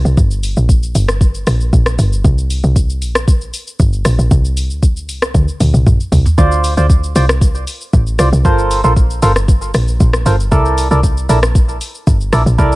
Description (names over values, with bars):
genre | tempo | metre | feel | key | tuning
amapiano | 116 BPM | 4/4 | straight | G dorian | A4 = 440 Hz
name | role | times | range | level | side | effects
woody log drum bass | bass | 0.0-12.8 s | G1 to D2 | -13 LUFS | equal | none
smooth R&B drum kit | drums | 0.1-12.8 s | hi-hat, kick drum, rim click, shaker, toms | -14 LUFS | equal | vintage 12-bit sampler grit
percussive organ stab | stabs | 6.4-12.8 s | E4 to D5 | -17 LUFS | right 2 dB | chorus, tape echo
room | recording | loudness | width
digital ambience | none | -11 LUFS | side -20 dB against mid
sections
0.0-12.8 A section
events
drum fill 5.3-6.4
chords
0.2 Gm; 2.2 Csus2; 6.4 Dm7; 8.4 Gm11; 10.5 C13